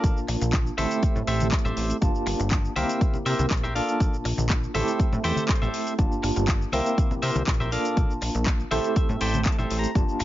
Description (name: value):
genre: filtered disco house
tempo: 121 BPM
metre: 4/4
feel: straight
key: unclear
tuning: A4 = 440 Hz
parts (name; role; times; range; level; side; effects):
- overdriven tine electric piano; accompaniment; 0.0-10.2 s; A3 to A5; -28 LUFS; right 1 dB; fast tremolo, phaser, vintage 12-bit sampler grit, sidechain pumping
- clean electric guitar; riff; 0.0-10.2 s; G4 to Bb5; -29 LUFS; equal; sidechain pumping
- plucky analog bass; bass; 0.0-10.2 s; G1 to C3; -28 LUFS; equal; sidechain pumping
- electronic kick drum; drums; 0.0-10.1 s; none; -23 LUFS; equal; overdrive
- house drum kit; drums; 0.0-10.2 s; handclaps, hi-hat, shaker; -32 LUFS; left 1 dB; overdrive, sidechain pumping on hats, sidechain pumping on perc
- tube shaker and congas; percussion; 0.0-10.2 s; none; -35 LUFS; left 3 dB; none
room: little or no reverb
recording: nothing above 7.5 kHz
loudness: -22 LUFS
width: side -14 dB against mid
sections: 0.0-10.2 A section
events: clean electric guitar fill 5.0-6.0, 8.5-10.0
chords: 0.0 Bbmaj7; 0.8 Am7; 2.0 Gm9; 2.8 C7; 3.8 Bbmaj7; 4.7 Am7; 6.0 Gm9; 6.7 C7; 7.7 Bbmaj7; 8.7 Am7